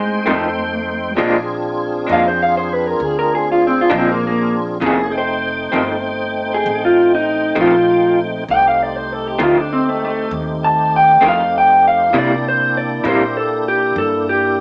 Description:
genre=slow blues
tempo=66 BPM (dotted quarters)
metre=12/8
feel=straight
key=F mixolydian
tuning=A4 = 440 Hz
part: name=electric guitar through a small old amp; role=melody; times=0.0-14.6 s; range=Ab3 to A5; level=-14 LUFS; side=equal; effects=none
part: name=tonewheel organ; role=sustained chords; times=0.0-14.6 s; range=A3 to G5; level=-21 LUFS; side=equal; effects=overdrive, chorus vibrato, slow rotary speaker
part: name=upright bass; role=bass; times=0.0-14.6 s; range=F1 to C3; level=-28 LUFS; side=equal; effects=none
part: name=electric guitar through a small old amp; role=accompaniment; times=0.3-13.2 s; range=F2 to E4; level=-17 LUFS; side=equal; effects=tremolo
room=moderate stone room reverb, RT60 0.9 s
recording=band playing live in one room, small speaker sound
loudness=-13 LUFS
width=side -32 dB against mid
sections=0.0-14.6 A section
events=clean electric guitar solo 0.0-14.6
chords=0.0 F7; 1.2 Bb7; 4.8 F7; 12.1 C7

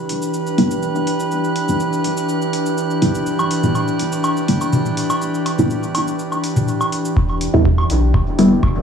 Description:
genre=dub techno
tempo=123 BPM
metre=4/4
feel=straight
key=E minor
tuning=A4 = 436 Hz
part: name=airy breathy pad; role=sustained chords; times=0.0-8.8 s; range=E3 to G4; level=-21 LUFS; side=equal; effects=chorus, sidechain pumping
part: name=drifting glass-harmonics texture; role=texture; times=0.0-7.2 s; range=B4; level=-26 LUFS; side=right 2 dB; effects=chorus, built-in reverb, sidechain pumping
part: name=electronic hi-hat and shaker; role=drums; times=0.1-8.5 s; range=none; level=-31 LUFS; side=left 1 dB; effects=none
part: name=filtered dub chord stab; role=stabs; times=0.6-8.6 s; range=D3 to E4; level=-18 LUFS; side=equal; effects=phaser, sidechain pumping, dub echo
part: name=electronic woodblock and toms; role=percussion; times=3.4-8.7 s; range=none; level=-22 LUFS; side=equal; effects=sidechain pumping on perc, sidechain pumping on toms, dub echo
part: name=round analog bass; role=bass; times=7.2-8.8 s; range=E1 to E2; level=-18 LUFS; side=equal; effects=sidechain pumping
part: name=electronic kick drum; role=drums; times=7.2-8.7 s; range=none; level=-17 LUFS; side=equal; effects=none
room=moderate digital room reverb, RT60 1.0 s, digital ambience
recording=dry, gritty hardware recording, vinyl crackle, studio reverb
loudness=-16 LUFS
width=side -7 dB against mid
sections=0.0-7.2 A section; 7.2-8.8 B section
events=filter sweep on synth stab 0.0-7.2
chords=0.0 Em7

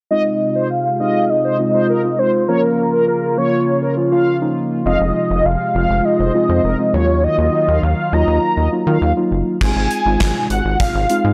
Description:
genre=synth-pop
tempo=101 BPM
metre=4/4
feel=straight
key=unclear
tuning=A4 = 440 Hz
part: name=unison lead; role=melody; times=0.1-11.3 s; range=Bb4 to Bb5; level=-21 LUFS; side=equal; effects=low-pass filter
part: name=mellow synth brass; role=second line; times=0.1-9.1 s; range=Bb4 to F5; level=-25 LUFS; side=equal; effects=chorus, analog delay
part: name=muted felt-like synth keys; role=accompaniment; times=0.1-11.3 s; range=F3 to F4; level=-22 LUFS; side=equal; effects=chorus, phaser, low-pass filter
part: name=chorused pulse-width pad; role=sustained chords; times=0.1-9.6 s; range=C3 to F4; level=-25 LUFS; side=equal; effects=low-pass filter
part: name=rubbery square bass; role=bass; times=4.9-11.3 s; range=F1 to Eb3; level=-20 LUFS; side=equal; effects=tube saturation
part: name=gated 80s drum kit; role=drums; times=9.6-11.2 s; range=crash cymbal, hi-hat, kick drum, snare drum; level=-22 LUFS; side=equal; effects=none
room=light reverb, small room ambience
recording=transformer saturation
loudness=-16 LUFS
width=mono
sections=0.1-9.6 A section; 9.6-11.3 B section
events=filter sweep 0.1-9.6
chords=0.1 Ab6; 2.5 Bbm; 4.9 Fm; 6.9 Ebmadd9; 9.6 Ab6

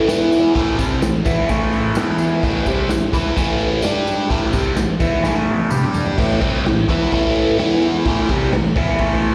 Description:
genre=garage rock duo or trio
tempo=128 BPM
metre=4/4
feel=straight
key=A minor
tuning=A4 = 441 Hz
part: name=biting overdriven guitar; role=riff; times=0.0-9.3 s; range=A2 to G4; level=-19 LUFS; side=equal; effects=phaser, slapback echo
part: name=raw garage drum kit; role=drums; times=0.1-9.3 s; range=crash cymbal, kick drum, snare drum, toms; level=-23 LUFS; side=equal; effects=none
part: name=tambourine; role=percussion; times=0.1-6.1 s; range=none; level=-41 LUFS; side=equal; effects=none
room=light reverb, small room reverb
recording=live gig heard through the venue's PA, recital hall reverb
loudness=-18 LUFS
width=mono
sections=0.0-6.2 A section; 6.2-9.3 A section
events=drum fill 5.2-6.2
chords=0.1 E5; 0.5 Am; 2.0 E5; 2.4 Am; 3.8 G5; 4.3 Am; 5.7 G5; 6.2 Am; 7.6 E5; 8.1 Am

